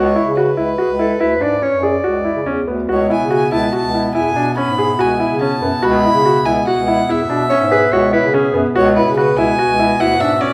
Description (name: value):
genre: contemporary instrumental, chamber music in an uneven meter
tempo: 144 BPM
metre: 7/4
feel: straight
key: C# phrygian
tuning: A4 = 440 Hz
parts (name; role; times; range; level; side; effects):
- dark violin; melody; 0.0-10.5 s; B4 to B5; -21 LUFS; equal; none
- clear baby grand piano; arpeggios; 0.0-10.5 s; B3 to G#4; -20 LUFS; equal; none
- warm bass clarinet; bass; 0.0-10.4 s; C#2 to C#3; -22 LUFS; equal; none
- clear clarinet; second line; 0.8-2.7, 7.5-8.7 s; G#4 to D5; -21 LUFS; equal; none
- pipe organ, foundations; sustained chords; 2.9-10.5 s; B2 to F#4; -26 LUFS; equal; none
room: wet recital hall reverb, RT60 1.6 s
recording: none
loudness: -15 LUFS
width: mono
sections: 0.0-10.5 A section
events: none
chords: 0.0 C#m7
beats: 0.37 0.79 1.20 1.62 2.04 2.47 | 2.89 3.32 3.74 4.16 4.58 5.00 5.42 | 5.84 6.25 6.67 7.09 7.50 7.92 8.34 | 8.75 9.17 9.59 10.00 10.41